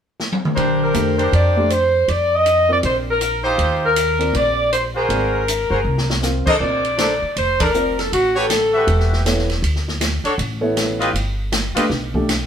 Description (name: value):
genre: jazz, big band swing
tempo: 159 BPM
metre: 4/4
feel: swing 64% on 8ths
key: Bb major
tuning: A4 = 441 Hz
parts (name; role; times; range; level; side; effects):
- open jazz drum kit; drums; 0.2-12.4 s; crash cymbal, hi-hat, kick drum, ride cymbal, snare drum, toms; -24 LUFS; equal; none
- clear trumpet section; stabs; 0.6-11.8 s; D4 to E5; -21 LUFS; right 1 dB; none
- upright bass; bass; 0.6-12.5 s; E1 to F2; -22 LUFS; equal; none
- warm saxophone section; melody; 0.8-9.1 s; F#4 to Eb5; -18 LUFS; left 1 dB; none
- warm grand piano; accompaniment; 0.9-12.3 s; A3 to F5; -23 LUFS; equal; none
room: moderate studio reverb, RT60 0.7 s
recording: band playing live in one room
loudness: -16 LUFS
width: side -8 dB against mid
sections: 0.6-6.6 A section; 6.6-12.5 B section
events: drum fill 0.2-0.6, 5.9-6.2; band accent 7.5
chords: 0.0 N.C.; 0.6 Bb69; 2.1 F5; 2.8 Bbadd9; 3.6 Eb69; 5.1 Ab9; 6.6 Bbmaj9; 8.1 A13; 9.6 Dmaj7(no3); 11.1 G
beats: 0.19 | 0.57 0.95 1.32 1.70 | 2.08 2.46 2.83 3.21 | 3.59 3.96 4.34 4.72 | 5.10 5.47 5.85 6.23 | 6.61 6.98 7.36 7.74 | 8.12 8.49 8.87 9.25 | 9.63 10.01 10.38 10.76 | 11.14 11.52 11.89 12.27